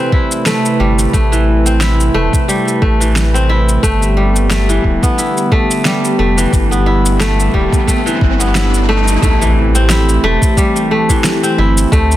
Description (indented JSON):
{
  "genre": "organic downtempo",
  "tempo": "89 BPM",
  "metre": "4/4",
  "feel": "swing 55% on 16ths",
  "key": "A minor",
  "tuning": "A4 = 438 Hz",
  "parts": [
    { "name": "warm analog pad", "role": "sustained chords", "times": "0.0-12.2 s", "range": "C3 to B4", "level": "-18 LUFS", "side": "right 1 dB", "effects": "chorus, sidechain pumping" },
    { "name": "kora", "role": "arpeggios", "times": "0.0-12.2 s", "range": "E3 to E4", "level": "-15 LUFS", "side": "equal", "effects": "tape echo" },
    { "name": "bronze singing bowl", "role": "texture", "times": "0.0-9.2 s", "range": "none", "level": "barely audible", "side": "none", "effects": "none" },
    { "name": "electronic kick drum", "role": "drums", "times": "0.1-12.1 s", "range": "none", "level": "-14 LUFS", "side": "equal", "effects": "overdrive" },
    { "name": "electronic shaker and snare drum", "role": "drums", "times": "0.3-12.2 s", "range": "none", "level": "-20 LUFS", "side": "equal", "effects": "none" },
    { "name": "warm sub bass", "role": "bass", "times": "0.8-12.2 s", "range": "D1 to D2", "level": "-14 LUFS", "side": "equal", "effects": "sidechain pumping" },
    { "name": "riser and impact", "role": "sound effects", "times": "6.6-11.9 s", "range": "none", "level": "-24 LUFS", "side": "equal", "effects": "none" }
  ],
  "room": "light reverb, digital ambience",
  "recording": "dense, heavily limited modern master",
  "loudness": "-10 LUFS",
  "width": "side -14 dB against mid",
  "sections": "0.0-9.2 A section; 9.2-12.2 B section",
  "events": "riser 6.6-9.2; impact 9.2-11.9",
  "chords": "0.0 Amadd9; 3.8 G; 9.2 Am7",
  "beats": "0.46 | 1.14 1.81 2.48 3.16 | 3.83 4.51 5.18 5.86 | 6.53 7.20 7.88 8.55 | 9.23 9.90 10.57 11.25 | 11.92"
}